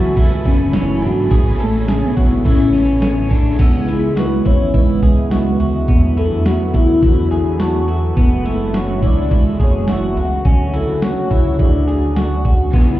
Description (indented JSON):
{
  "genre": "dream pop",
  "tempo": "105 BPM",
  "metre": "4/4",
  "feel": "straight",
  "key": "D lydian",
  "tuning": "A4 = 440 Hz",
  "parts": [
    { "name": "soft octave-layered synth lead", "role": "melody", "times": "0.0-12.5 s", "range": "A3 to F#5", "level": "-20 LUFS", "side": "left 1 dB", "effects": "chorus, phaser, tape echo" },
    { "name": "cranked stack guitar", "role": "accompaniment", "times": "0.0-3.6, 12.7-13.0 s", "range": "C#3 to C#5", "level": "-24 LUFS", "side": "right 2 dB", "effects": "overdrive, tremolo, ensemble chorus" },
    { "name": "phased analog pad", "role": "sustained chords", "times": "0.0-13.0 s", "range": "C#3 to B5", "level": "-22 LUFS", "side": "right 1 dB", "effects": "phaser, chorus" },
    { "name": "clean electric guitar", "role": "arpeggios", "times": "0.0-13.0 s", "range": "B3 to A4", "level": "-23 LUFS", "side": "left 2 dB", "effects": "lush chorus, tape echo" },
    { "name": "chorused synth bass", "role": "bass", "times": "0.0-13.0 s", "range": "F#1 to E2", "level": "-18 LUFS", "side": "equal", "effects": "none" },
    { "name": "celesta", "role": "texture", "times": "0.0-11.6 s", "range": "G#5 to B6", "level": "-36 LUFS", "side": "right 1 dB", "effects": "tape echo" },
    { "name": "clean 12-bit digital drum machine", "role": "drums", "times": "0.2-12.9 s", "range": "crash cymbal, kick drum, ride cymbal, snare drum, tambourine", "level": "-16 LUFS", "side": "equal", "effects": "none" }
  ],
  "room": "little or no reverb",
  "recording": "heard muffled through a wall, club reverb, EQ",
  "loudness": "-13 LUFS",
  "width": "side -14 dB against mid",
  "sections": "0.0-3.6 A section; 3.6-13.0 B section",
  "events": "none",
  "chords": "0.0 F#m11; 1.3 Amaj9; 3.6 C#m7; 5.9 E9sus4; 8.2 F#m11; 10.5 Dmaj7",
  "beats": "0.17 0.74 | 1.31 1.88 2.45 3.02 | 3.60 4.17 4.74 5.31 | 5.88 6.45 7.03 7.60 | 8.17 8.74 9.31 9.88 | 10.45 11.03 11.60 12.17 | 12.74"
}